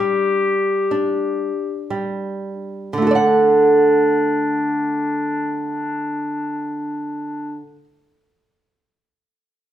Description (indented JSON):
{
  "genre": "romantic duo for clarinet and classical guitar",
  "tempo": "31 BPM",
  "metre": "4/4",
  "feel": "rubato",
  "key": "D major",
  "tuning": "A4 = 440 Hz",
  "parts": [
    { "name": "bright clarinet", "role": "melody", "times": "0.0-7.6 s", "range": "D4 to G4", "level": "-21 LUFS", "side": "left 2 dB", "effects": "none" },
    { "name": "nylon-string guitar", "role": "accompaniment", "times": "0.0-7.8 s", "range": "D3 to F#5", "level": "-19 LUFS", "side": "right 2 dB", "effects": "none" }
  ],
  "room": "wet large studio reverb, RT60 0.8 s",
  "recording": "band playing live in one room",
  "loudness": "-17 LUFS",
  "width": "side -11 dB against mid",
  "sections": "0.0-2.9 A section; 2.9-9.7 B section",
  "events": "slowing down 0.0-2.9",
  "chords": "0.0 G5; 2.9 D"
}